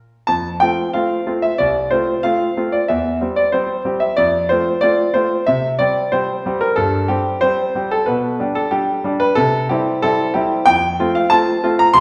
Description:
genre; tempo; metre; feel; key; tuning
classical-period piano sonatina; 93 BPM; 4/4; straight; F major; A4 = 436 Hz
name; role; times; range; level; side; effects
clear grand piano; solo; 0.3-12.0 s; C2 to C6; -17 LUFS; equal; none
room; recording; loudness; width
wet recital hall reverb, RT60 1.4 s; recorded in a church or concert hall; -17 LUFS; mono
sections
0.3-12.0 A section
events
none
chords
0.3 F; 2.9 C/E; 4.2 F; 5.5 C5; 8.1 G/B; 9.4 C; 10.7 F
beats
| 0.28 0.93 1.59 2.24 | 2.89 3.54 4.18 4.83 | 5.48 6.13 6.78 7.43 | 8.07 8.72 9.37 10.02 | 10.66 11.31 11.95

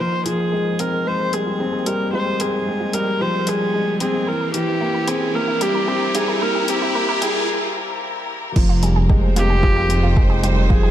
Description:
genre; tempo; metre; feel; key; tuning
piano and strings electronica; 112 BPM; 4/4; straight; F minor; A4 = 439 Hz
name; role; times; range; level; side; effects
dark viola; melody; 0.0-10.9 s; G4 to C5; -22 LUFS; equal; ping-pong delay
warm studio string section; sustained chords; 0.0-10.9 s; F3 to G5; -28 LUFS; equal; sidechain pumping, low-pass filter
felt-muted upright piano; riff; 0.0-10.9 s; E3 to F4; -23 LUFS; equal; ping-pong delay
riser; sound effects; 2.8-7.5 s; none; -28 LUFS; equal; none
analog pluck; arpeggios; 0.1-10.9 s; E4 to Bb4; -32 LUFS; right 3 dB; chorus, sidechain pumping, ping-pong delay
deep house drum kit; drums; 0.3-10.5 s; crash cymbal, hi-hat; -27 LUFS; left 2 dB; none
dark detuned saw bass; bass; 8.6-10.9 s; F1; -18 LUFS; equal; sidechain pumping
electronic kick drum; drums; 8.6-10.8 s; none; -17 LUFS; equal; none
room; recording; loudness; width
light reverb; dark, warm production, high-pass filter; -17 LUFS; side -11 dB against mid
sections
0.0-8.6 A section; 8.6-10.9 B section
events
build-up 0.0-8.6; filter sweep on string section 0.0-8.6; filter sweep 0.0-8.6; riser 2.8-7.5; break 7.5-8.6; drop 8.6-10.9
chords
0.0 Fmadd9; 4.3 C7; 8.6 Fmadd9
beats
0.53 1.06 1.60 | 2.13 2.67 3.20 3.74 | 4.28 4.81 5.35 5.88 | 6.42 6.95 7.49 8.03 | 8.56 9.10 9.63 10.17 | 10.70

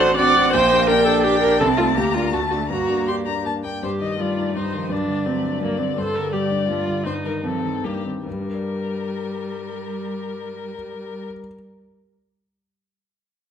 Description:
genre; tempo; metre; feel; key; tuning
quick classical-period movement for piano quartet; 139-171 BPM; 3/4; rubato; G minor; A4 = 440 Hz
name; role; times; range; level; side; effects
warm violin; melody; 0.0-11.3 s; G4 to C6; -26 LUFS; left 6 dB; none
rich cello; second line; 0.0-11.3 s; Eb3 to D4; -28 LUFS; right 3 dB; none
warm concert grand piano; accompaniment; 0.0-11.5 s; A1 to D5; -26 LUFS; left 3 dB; none
warm viola; accompaniment; 0.0-11.2 s; G3 to D5; -22 LUFS; right 2 dB; none
room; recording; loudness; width
moderate recital hall reverb, RT60 1.4 s; close, detailed microphones; -19 LUFS; side -8 dB against mid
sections
0.0-3.8 A section; 3.8-8.3 B section; 8.3-10.7 C section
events
slowing down 5.4-8.3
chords
0.0 D7/A; 0.5 Gm/Bb; 1.6 Adim/C; 2.0 Gm/D; 2.3 D; 2.7 Gm; 3.8 Cm/G; 4.9 D7/G; 6.0 G5; 7.1 Cm/G; 8.3 Gm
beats
0.17 | 0.53 0.89 1.24 | 1.60 1.96 2.33 | 2.70 3.08 3.45 | 3.83 4.19 4.56 | 4.91 5.27 5.62 | 5.97 6.33 6.69 | 7.05 7.43 7.84 | 8.26 8.67 9.08 | 9.50 9.91 10.33

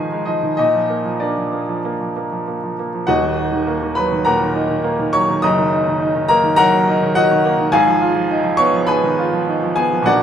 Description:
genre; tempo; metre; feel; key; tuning
classical, virtuoso piano study; 95-107 BPM; 4/4; rubato; Eb minor; A4 = 441 Hz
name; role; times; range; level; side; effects
clear baby grand piano; solo; 0.0-10.2 s; Eb1 to Eb6; -15 LUFS; equal; none
room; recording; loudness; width
light reverb; minimal, uncompressed stereo recording; -15 LUFS; side -9 dB against mid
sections
0.0-3.1 A section; 3.1-10.2 B section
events
none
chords
0.0 Fm7b5/Ab; 0.6 Bb; 3.1 Ebm; 5.4 Ebm/Gb; 7.7 Fm7b5/Ab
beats
| 0.58 1.21 1.84 2.47 | 3.08 3.67 4.26 4.84 | 5.43 6.01 6.58 7.16 | 7.73 8.30 8.88 9.47 | 10.08

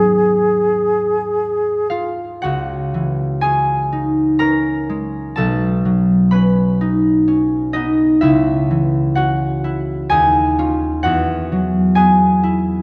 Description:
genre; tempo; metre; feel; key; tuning
classical, impressionist duo for flute and harp; 63 BPM; 3/4; uneven beats, rubato; C# minor; A4 = 440 Hz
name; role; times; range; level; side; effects
mellow silver concert flute; melody; 0.0-1.9 s; G#4; -17 LUFS; equal; none
concert harp; accompaniment; 0.0-12.8 s; B1 to B5; -17 LUFS; equal; none
room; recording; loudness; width
wet concert hall reverb, RT60 1.9 s; none; -16 LUFS; mono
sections
0.0-2.4 A section; 2.4-12.8 B section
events
none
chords
0.0 G#m11; 2.4 C#madd9; 5.4 B9; 8.2 C#m7; 10.1 D#m11; 11.0 Eadd9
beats
0.31 1.37 | 2.44 3.44 4.42 | 5.38 6.34 7.28 | 8.23 9.17 10.11 | 11.04 11.96

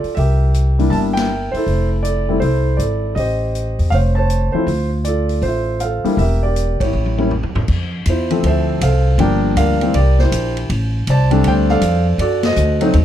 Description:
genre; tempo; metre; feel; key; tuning
jazz piano trio; 160 BPM; 4/4; swing 65% on 8ths; D minor; A4 = 439 Hz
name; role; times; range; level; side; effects
warm concert grand piano; melody; 0.0-13.0 s; E3 to A5; -18 LUFS; equal; plate reverb
upright bass; bass; 0.0-13.0 s; E1 to A2; -16 LUFS; equal; none
swinging big-band drum kit; drums; 0.0-13.0 s; crash cymbal, hi-hat, kick drum, ride cymbal, snare drum, toms; -28 LUFS; left 1 dB; none
room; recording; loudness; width
little or no reverb; none; -14 LUFS; side -11 dB against mid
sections
0.0-7.7 A section; 7.7-13.0 B section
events
band accent 1.1, 6.7, 12.4; drum fill 6.9-7.7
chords
0.2 C7; 1.7 Fmaj7; 3.2 A7alt; 4.7 Dm9; 6.2 Em7b5; 6.9 A7; 7.7 Dm9; 9.2 Gm7; 9.9 C7; 10.7 F69; 12.2 D7b9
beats
| 0.16 0.54 0.92 1.29 | 1.67 2.04 2.42 2.79 | 3.17 3.55 3.92 4.30 | 4.67 5.05 5.43 5.80 | 6.18 6.55 6.93 7.30 | 7.68 8.06 8.43 8.81 | 9.19 9.56 9.94 10.31 | 10.69 11.06 11.44 11.81 | 12.19 12.57 12.94

